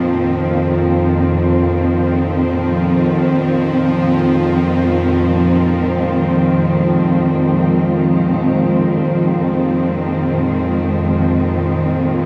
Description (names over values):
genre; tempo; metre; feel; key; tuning
dark ambient drone; free time; none; none; unclear; A4 = 440 Hz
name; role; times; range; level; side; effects
dark symphonic cello section; sustained chords; 0.0-12.3 s; F2 to C4; -17 LUFS; equal; none
bowed-like drone; drone; 0.0-12.3 s; F2 to F3; -20 LUFS; equal; built-in reverb
room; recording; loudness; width
wet cathedral reverb, RT60 5.4 s; none; -15 LUFS; mono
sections
0.0-12.3 A section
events
none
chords
0.0 Abadd9/F